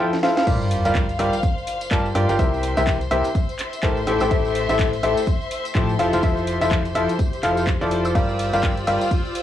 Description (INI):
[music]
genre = piano house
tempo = 125 BPM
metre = 4/4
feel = swing 59% on 16ths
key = G dorian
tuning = A4 = 437 Hz
[part]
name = clear grand piano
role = riff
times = 0.0-9.0 s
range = C3 to A5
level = -21 LUFS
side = left 1 dB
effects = sidechain pumping, cassette tape, analog delay
[part]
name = noise sweep and sub drop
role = sound effects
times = 0.0-2.4 s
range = none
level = -29 LUFS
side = equal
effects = none
[part]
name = house drum kit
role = drums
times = 0.1-9.4 s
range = crash cymbal, handclaps, hi-hat, ride cymbal, shaker, snare drum, woodblock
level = -30 LUFS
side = right 1 dB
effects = cassette tape
[part]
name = clear chamber violin section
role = sustained chords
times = 0.5-9.4 s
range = C5 to E6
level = -32 LUFS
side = left 3 dB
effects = sidechain pumping, cassette tape
[part]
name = organ-like FM bass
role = bass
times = 0.5-9.0 s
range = F1 to A2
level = -26 LUFS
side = equal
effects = sidechain pumping
[part]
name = electronic kick drum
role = drums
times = 0.5-9.2 s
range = none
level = -22 LUFS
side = equal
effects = overdrive, cassette tape
[part]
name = tambourine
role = percussion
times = 0.5-9.3 s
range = none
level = -43 LUFS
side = equal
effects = none
[part]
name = dark studio string section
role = texture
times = 0.8-9.4 s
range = F4 to F5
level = -30 LUFS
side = left 3 dB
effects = sidechain pumping, cassette tape
[sound]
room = light reverb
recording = home recording on cassette, small room ambience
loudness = -18 LUFS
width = side -11 dB against mid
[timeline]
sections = 0.5-9.4 A section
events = break 0.0-0.5; drum fill 0.1-0.5; drop 0.5-9.4; impact 0.5-2.4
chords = 0.5 Gm7; 2.4 C7; 4.1 Am7; 6.0 Fmaj7; 8.2 Gm7